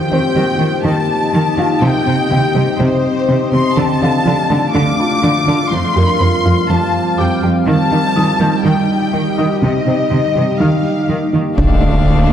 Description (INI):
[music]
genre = cinematic, hybrid orchestral and electronic film score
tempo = 123 BPM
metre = 4/4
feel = straight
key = unclear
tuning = A4 = 440 Hz
[part]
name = rich symphonic violin section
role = melody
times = 0.0-12.3 s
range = F4 to D6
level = -19 LUFS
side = left 2 dB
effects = none
[part]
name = evolving wavetable pad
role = sustained chords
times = 0.0-12.3 s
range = G3 to F5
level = -17 LUFS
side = left 1 dB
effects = chorus, built-in reverb
[part]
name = analog pluck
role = arpeggios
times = 0.1-12.0 s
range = C3 to G4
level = -21 LUFS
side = right 2 dB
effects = chorus, digital delay
[part]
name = rich symphonic cello section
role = bass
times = 0.1-12.3 s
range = D2 to Eb3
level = -17 LUFS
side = right 2 dB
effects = none
[part]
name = felt-muted upright piano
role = texture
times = 0.1-11.6 s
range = C4 to G6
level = -25 LUFS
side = left 2 dB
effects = digital delay
[part]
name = rich violin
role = melody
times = 11.6-12.3 s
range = F5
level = -23 LUFS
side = left 5 dB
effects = none
[part]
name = rich symphonic violin section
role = second line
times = 11.6-12.3 s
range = D4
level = -23 LUFS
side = left 2 dB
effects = none
[part]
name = rich symphonic viola section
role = accompaniment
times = 11.6-12.3 s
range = A3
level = -22 LUFS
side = equal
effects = none
[part]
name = sub bass with octave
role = bass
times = 11.6-12.3 s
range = D1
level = -16 LUFS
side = equal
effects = none
[part]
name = warm symphonic double bass section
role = bass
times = 11.6-12.3 s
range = D2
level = -19 LUFS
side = right 2 dB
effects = none
[part]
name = taiko ensemble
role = drums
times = 11.6-12.3 s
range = none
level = -20 LUFS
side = equal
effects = none
[part]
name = impact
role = sound effects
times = 11.6-12.3 s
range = none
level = -19 LUFS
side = equal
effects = none
[sound]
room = wet concert hall reverb, RT60 1.9 s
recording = dark, warm production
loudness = -12 LUFS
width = side -9 dB against mid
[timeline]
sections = 0.0-11.6 A section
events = impact 11.6-12.3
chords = 0.0 Eb; 1.8 Cm; 3.8 Dm; 5.7 Fsus2; 7.7 Eb; 9.6 Cm; 10.6 Ebadd9; 11.6 Dm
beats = 0.36 0.85 1.33 | 1.82 2.31 2.80 3.29 | 3.77 4.26 4.75 5.24 | 5.72 6.21 6.70 7.19 | 7.67 8.16 8.65 9.14 | 9.63 10.11 10.60 11.09 | 11.58 12.06